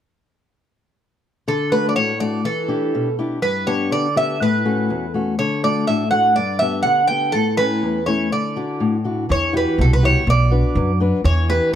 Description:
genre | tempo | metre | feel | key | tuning
greek folk | 123 BPM | 2/4 | straight | D major | A4 = 437 Hz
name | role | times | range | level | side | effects
Greek bouzouki | melody | 1.5-11.7 s | A4 to G5 | -20 LUFS | right 2 dB | none
fingerpicked old ladder-braced acoustic guitar | accompaniment | 1.5-11.8 s | E2 to B4 | -20 LUFS | left 3 dB | none
upright bass | bass | 9.3-11.6 s | B1 to F#2 | -17 LUFS | right 1 dB | none
room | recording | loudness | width
little or no reverb | close, detailed microphones | -16 LUFS | side -10 dB against mid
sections
1.5-9.3 A section; 9.3-11.8 B section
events
none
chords
1.5 D; 2.4 Em7; 3.4 G; 4.4 A6; 5.4 D; 6.4 G; 7.3 A; 8.3 Dadd9; 9.3 Emadd9; 10.3 Bm; 11.2 Em

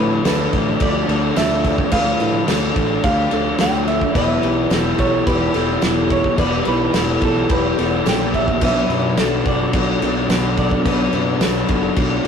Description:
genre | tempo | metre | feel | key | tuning
rock, shoegaze and dream pop | 108 BPM | 4/4 | straight | unclear | A4 = 440 Hz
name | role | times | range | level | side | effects
semi-hollow electric guitar | melody | 0.0-12.3 s | A4 to G5 | -23 LUFS | right 4 dB | none
fingerpicked twelve-string acoustic guitar | arpeggios | 0.0-12.3 s | F#4 to B4 | -27 LUFS | left 7 dB | none
crunchy overdriven guitar | riff | 0.0-12.3 s | B2 to A4 | -22 LUFS | left 6 dB | none
raw garage guitar | riff | 0.0-12.3 s | B2 to A4 | -23 LUFS | right 6 dB | overdrive
growling fingered electric bass | bass | 0.0-12.3 s | E1 to A2 | -24 LUFS | equal | overdrive
loose indie drum kit | drums | 0.3-12.3 s | crash cymbal, kick drum, snare drum | -20 LUFS | equal | none
tambourine | percussion | 0.3-11.5 s | none | -40 LUFS | right 7 dB | none
room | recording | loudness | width
wet stone room reverb, RT60 1.0 s | rough rehearsal-room recording, tube saturation | -15 LUFS | side -7 dB against mid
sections
0.0-12.3 A section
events
none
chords
0.0 Dm6; 4.2 Em; 8.6 Bm7

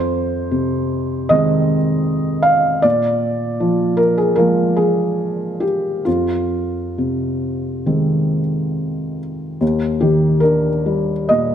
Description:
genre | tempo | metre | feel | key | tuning
neoclassical minimalist piano | 66-81 BPM | 4/4 | rubato | F dorian | A4 = 441 Hz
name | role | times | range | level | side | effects
felt-muted upright piano | solo | 0.0-11.5 s | Eb2 to F5 | -15 LUFS | equal | none
room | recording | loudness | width
moderate concert hall reverb, RT60 1.9 s | none | -15 LUFS | side -9 dB against mid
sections
0.0-9.6 A section; 9.6-11.5 B section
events
none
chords
0.0 Fm7; 2.8 Bb7; 6.1 Fm7; 9.6 Ebmaj7

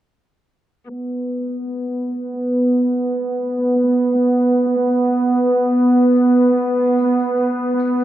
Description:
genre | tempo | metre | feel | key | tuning
trip hop | 74 BPM | 4/4 | straight | unclear | A4 = 440 Hz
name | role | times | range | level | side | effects
clear studio string section | sustained chords | 0.9-8.0 s | B3 | -15 LUFS | right 1 dB | low-pass filter
tambourine and triangle | percussion | 0.9-8.0 s | none | -56 LUFS | left 6 dB | none
room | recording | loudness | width
moderate plate reverb, RT60 2.8 s | low-pass filter | -15 LUFS | side -13 dB against mid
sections
0.9-8.0 A section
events
filter sweep on string section 0.9-8.0; filter sweep 0.9-8.0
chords
none

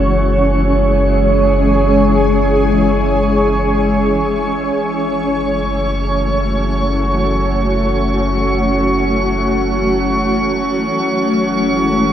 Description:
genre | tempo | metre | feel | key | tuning
ambient | free time | none | none | F# minor | A4 = 445 Hz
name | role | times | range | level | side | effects
shimmering ambient pad | sustained chords | 0.0-12.1 s | E3 to C#5 | -14 LUFS | equal | chorus, built-in reverb
round analog bass | bass | 0.0-12.1 s | F#1 | -20 LUFS | equal | none
bowed-like drone | drone | 6.9-12.1 s | F#3 to C#4 | -22 LUFS | equal | built-in reverb
drifting glass-harmonics texture | texture | 5.1-12.1 s | C#6 | -22 LUFS | right 1 dB | chorus, built-in reverb
room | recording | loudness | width
wet shimmer reverb, RT60 8.9 s | dark, warm production | -13 LUFS | side -10 dB against mid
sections
0.0-12.1 A section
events
fade-out on analog synth bass 0.0-12.1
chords
0.0 C#m/F#; 4.7 F#m7; 11.0 C#m/F#

